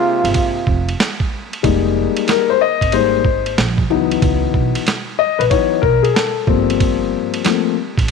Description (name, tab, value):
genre	hip hop, jazz-hop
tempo	93 BPM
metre	4/4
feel	swing 65% on 16ths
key	unclear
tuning	A4 = 440 Hz
part	breathy flugelhorn	melody	0.0-1.0 s	F4	-18 LUFS	right 2 dB	none
part	brilliant trombone	second line	0.0-1.0 s	C3	-25 LUFS	right 12 dB	none
part	dark baby grand piano	accompaniment	0.0-8.1 s	Fb3 to Eb5	-16 LUFS	left 13 dB	none
part	upright bass	bass	0.2-8.1 s	F1 to Db2	-21 LUFS	right 3 dB	none
part	boom bap sampler-style drum kit	drums	0.2-8.1 s	hi-hat, kick drum, ride cymbal, snare drum	-20 LUFS	right 3 dB	none
room	light reverb, small room ambience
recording	1960s-style stereo with parts hard left and right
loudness	-14 LUFS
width	side -5 dB against mid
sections	0.0-1.6 A section; 1.6-8.1 B section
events	grand piano solo 1.6-8.1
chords	0.0 Fm11; 3.9 Dbm11; 6.5 Gm11